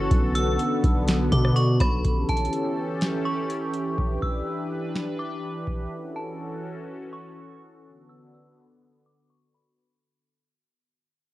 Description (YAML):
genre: hip hop, atmospheric cloud-rap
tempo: 124 BPM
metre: 4/4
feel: half-time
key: B minor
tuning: A4 = 440 Hz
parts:
  - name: metallic FM bell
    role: melody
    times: 0.0-9.8 s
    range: A5 to E6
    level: -32 LUFS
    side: right 1 dB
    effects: chorus, phaser, low-pass filter, cassette tape, analog delay
  - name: sweeping resonant pad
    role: sustained chords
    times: 0.0-9.8 s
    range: D3 to B4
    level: -28 LUFS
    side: equal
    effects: chorus, low-pass filter, cassette tape
  - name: long sustained 808-style bass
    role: bass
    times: 0.0-2.0 s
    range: B1 to B2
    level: -23 LUFS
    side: equal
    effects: none
  - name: booming analog drum machine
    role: drums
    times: 0.1-5.9 s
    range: hi-hat, kick drum, rim click, snare drum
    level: -24 LUFS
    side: equal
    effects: cassette tape
room: light reverb, digital ambience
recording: home recording on cassette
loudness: -23 LUFS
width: side -16 dB against mid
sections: 0.0-2.0 A section; 2.0-9.8 B section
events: fade-out 2.0-9.8; filter sweep 2.0-9.8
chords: 0.1 Bm7; 2.0 A7; 4.0 Em7; 5.9 F#m7; 7.9 Bm7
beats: | 0.11 0.59 1.08 1.56 | 2.04 2.53 3.01 3.50 | 3.98 4.46 4.95 5.43 | 5.92 6.40 6.88 7.37 | 7.85 8.34 8.82 9.30